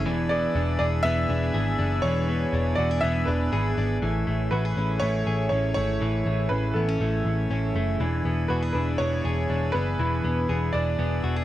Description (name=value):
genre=indie pop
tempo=121 BPM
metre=4/4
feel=straight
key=A major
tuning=A4 = 440 Hz
part: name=electric guitar through a small old amp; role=accompaniment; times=0.0-11.4 s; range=E3 to G#4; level=-32 LUFS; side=right 6 dB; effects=lush chorus
part: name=direct-recorded clean electric guitar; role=arpeggios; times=0.0-11.4 s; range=E3 to G#4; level=-29 LUFS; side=left 4 dB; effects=none
part: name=vintage muted picked electric bass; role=bass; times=0.0-11.4 s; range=E1 to A1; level=-26 LUFS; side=equal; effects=none
part: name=hand-pumped harmonium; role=sustained chords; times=0.1-11.4 s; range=A3 to G#5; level=-36 LUFS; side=equal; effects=none
part: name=clear upright piano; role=melody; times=0.3-11.4 s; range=A4 to E5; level=-28 LUFS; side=right 1 dB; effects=none
room=light reverb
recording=none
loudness=-22 LUFS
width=side -14 dB against mid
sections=0.0-4.0 A section; 4.0-11.4 B section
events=none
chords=0.1 E7; 4.0 Amaj7; 8.0 E7